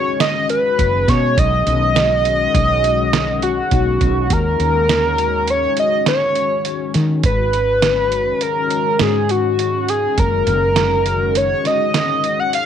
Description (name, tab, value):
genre	progressive instrumental, band music in an uneven meter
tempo	102 BPM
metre	5/4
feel	straight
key	Eb minor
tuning	A4 = 439 Hz
part	pulse-width lead	melody	0.0-12.7 s	F#4 to Gb5	-16 LUFS	equal	chorus
part	dark analog pad	accompaniment	0.0-12.7 s	Eb3 to Gb4	-24 LUFS	left 12 dB	chorus
part	lo-fi sampler-style drum kit	drums	0.2-12.7 s	hi-hat, kick drum, snare drum	-20 LUFS	right 3 dB	none
part	woody fretless electric bass	bass	0.8-11.5 s	Gb1 to Eb3	-20 LUFS	equal	lush chorus
room	light reverb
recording	1960s-style stereo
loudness	-14 LUFS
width	side -8 dB against mid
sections	0.0-4.3 A section; 4.3-12.7 B section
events	none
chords	0.0 Abm7; 1.4 B; 4.3 Ebm7; 7.2 Abm11; 10.2 Gb6